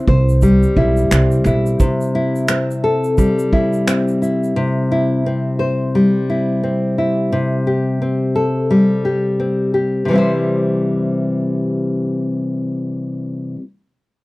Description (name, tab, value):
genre	acoustic pop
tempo	87 BPM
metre	4/4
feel	swing 60% on 16ths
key	C major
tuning	A4 = 440 Hz
part	nylon-string guitar	accompaniment	0.0-13.7 s	C3 to C5	-16 LUFS	left 1 dB	none
part	upright bass	bass	0.1-1.7 s	B1 to C2	-15 LUFS	right 1 dB	none
part	unplugged drum kit	drums	0.1-4.6 s	finger snaps, kick drum, shaker	-19 LUFS	right 1 dB	none
room	little or no reverb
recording	none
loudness	-15 LUFS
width	side -20 dB against mid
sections	0.0-10.1 A section; 10.1-12.9 B section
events	none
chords	0.0 C; 1.8 Am7/C